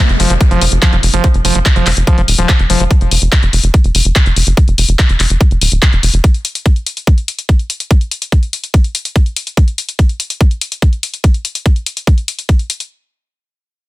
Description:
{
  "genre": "psychedelic trance",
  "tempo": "144 BPM",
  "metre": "4/4",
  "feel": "straight",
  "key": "unclear",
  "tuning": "A4 = 440 Hz",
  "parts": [
    { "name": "screaming distorted acid line", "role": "riff", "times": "0.0-2.8 s", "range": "F3", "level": "-18 LUFS", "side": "moving between left 5 dB and right 8 dB", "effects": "distortion, chorus, auto-pan, sidechain pumping, digital delay" },
    { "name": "downlifter", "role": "sound effects", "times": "0.0-2.9 s", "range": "none", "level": "-24 LUFS", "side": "left 2 dB", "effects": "none" },
    { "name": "tight sequencer bass", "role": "bass", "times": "0.1-6.2 s", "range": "Eb1 to Gb1", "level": "-12 LUFS", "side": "equal", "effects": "none" },
    { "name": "big-room dance drum kit", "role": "drums", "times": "0.1-12.9 s", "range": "handclaps, hi-hat", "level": "-17 LUFS", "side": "left 2 dB", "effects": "none" },
    { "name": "electronic kick drum", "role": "drums", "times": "0.4-12.6 s", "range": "none", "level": "-9 LUFS", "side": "equal", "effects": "none" }
  ],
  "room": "little or no reverb",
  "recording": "dense, heavily limited modern master",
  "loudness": "-10 LUFS",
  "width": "side -18 dB against mid",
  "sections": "0.0-12.9 A section",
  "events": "filter sweep on analog synth bass 0.0-6.2",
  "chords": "none"
}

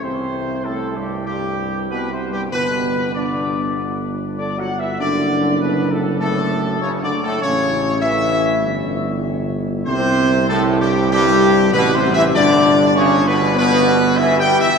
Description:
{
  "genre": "classical",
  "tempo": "98 BPM",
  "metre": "4/4",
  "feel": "straight",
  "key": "unclear",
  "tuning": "A4 = 440 Hz",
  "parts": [
    { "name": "warm trumpet section", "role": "melody", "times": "0.0-14.8 s", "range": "G4 to G5", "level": "-19 LUFS", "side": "left 1 dB", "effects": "none" },
    { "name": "dark French horn section", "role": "sustained chords", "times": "0.0-14.7 s", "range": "G3 to G4", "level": "-21 LUFS", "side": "left 2 dB", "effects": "none" },
    { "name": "warm trombone section", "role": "sustained chords", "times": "0.0-14.7 s", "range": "G2 to G3", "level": "-24 LUFS", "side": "right 2 dB", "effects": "none" },
    { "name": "mellow tuba", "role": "bass", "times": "0.0-14.6 s", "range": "F#1 to C2", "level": "-21 LUFS", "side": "right 2 dB", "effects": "none" }
  ],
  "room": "wet cathedral reverb, RT60 4.5 s",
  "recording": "none",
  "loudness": "-15 LUFS",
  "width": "side -5 dB against mid",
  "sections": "0.0-14.8 A section",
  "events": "none",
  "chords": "0.0 C5; 2.5 G; 5.0 D/F#; 7.4 A; 8.6 N.C.; 9.9 C5; 12.3 G"
}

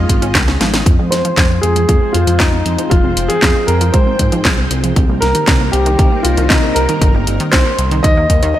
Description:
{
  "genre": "italo disco",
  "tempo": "117 BPM",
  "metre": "4/4",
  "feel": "straight",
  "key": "F minor",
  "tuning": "A4 = 440 Hz",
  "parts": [
    { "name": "dark grand piano", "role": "melody", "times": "0.0-8.6 s", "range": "Eb4 to Eb5", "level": "-17 LUFS", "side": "left 1 dB", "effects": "vintage 12-bit sampler grit, low-pass filter, tape echo" },
    { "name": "string machine, full ensemble", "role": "sustained chords", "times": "0.0-8.5 s", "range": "F3 to G5", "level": "-22 LUFS", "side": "equal", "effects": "ensemble chorus" },
    { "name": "analog pluck", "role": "arpeggios", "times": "0.0-8.5 s", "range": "Eb3 to Db4", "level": "-23 LUFS", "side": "right 2 dB", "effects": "chorus, tape echo" },
    { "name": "chorused synth bass", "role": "bass", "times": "0.0-8.5 s", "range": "F1 to Ab2", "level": "-17 LUFS", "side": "equal", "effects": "none" },
    { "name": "electronic kick drum", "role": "drums", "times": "0.1-8.4 s", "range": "none", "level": "-13 LUFS", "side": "equal", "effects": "none" },
    { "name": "house drum kit", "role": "drums", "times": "0.1-8.5 s", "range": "handclaps, hi-hat, snare drum", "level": "-17 LUFS", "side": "equal", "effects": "none" }
  ],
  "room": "light reverb",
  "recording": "none",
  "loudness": "-11 LUFS",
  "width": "side -12 dB against mid",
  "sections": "0.9-8.6 A section",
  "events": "drum fill 0.5-0.9; filter sweep on synth arpeggio sound 0.9-8.6; filter sweep on string machine 0.9-8.6",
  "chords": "0.0 Dbadd9; 0.9 Fm; 5.0 Cm7"
}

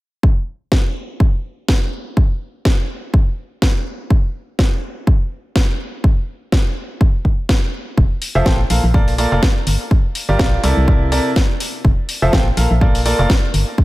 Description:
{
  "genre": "piano house",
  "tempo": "124 BPM",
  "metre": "4/4",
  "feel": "swing 56% on 16ths",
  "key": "unclear",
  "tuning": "A4 = 440 Hz",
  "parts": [
    { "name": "electronic kick drum", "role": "drums", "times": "0.2-13.8 s", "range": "none", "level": "-14 LUFS", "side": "equal", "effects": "none" },
    { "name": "house drum kit", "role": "drums", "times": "0.7-13.6 s", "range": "hi-hat, snare drum", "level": "-22 LUFS", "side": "equal", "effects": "none" },
    { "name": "organ-like FM bass", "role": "bass", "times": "8.0-13.6 s", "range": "F1 to C2", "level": "-16 LUFS", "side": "equal", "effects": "sidechain pumping" },
    { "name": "bright baby grand piano", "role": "riff", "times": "8.4-13.3 s", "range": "C3 to G5", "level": "-19 LUFS", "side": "right 1 dB", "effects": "sidechain pumping, tape echo" }
  ],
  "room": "little or no reverb",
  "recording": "none",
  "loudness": "-14 LUFS",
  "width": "side -18 dB against mid",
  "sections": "0.2-13.8 A section",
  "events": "none",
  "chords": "0.2 N.C.; 8.0 Fmaj7; 8.7 Bbmaj7; 9.7 Gm7; 10.6 C13; 11.8 Fmaj7; 12.6 Bbmaj7"
}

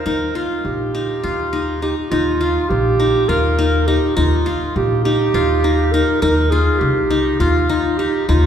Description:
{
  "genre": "contemporary instrumental, chamber music in an uneven meter",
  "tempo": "204 BPM (eighths)",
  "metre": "7/8",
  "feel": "straight",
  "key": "Eb major",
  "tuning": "A4 = 440 Hz",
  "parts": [
    { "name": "breathy clarinet", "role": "melody", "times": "0.0-8.5 s", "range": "F4 to Bb4", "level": "-19 LUFS", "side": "right 4 dB", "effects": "none" },
    { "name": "qanun", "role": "arpeggios", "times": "0.0-8.5 s", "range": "Eb4 to F4", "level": "-19 LUFS", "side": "left 3 dB", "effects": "none" },
    { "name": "upright bass", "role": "bass", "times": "0.1-8.5 s", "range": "Bb1 to Eb2", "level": "-20 LUFS", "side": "left 1 dB", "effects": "none" }
  ],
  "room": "wet church reverb, RT60 2.6 s",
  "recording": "recorded in a church or concert hall",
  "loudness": "-15 LUFS",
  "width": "side -8 dB against mid",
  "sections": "0.0-2.1 A section; 2.1-8.5 B section",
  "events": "none",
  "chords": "0.0 Eb5; 6.2 F5"
}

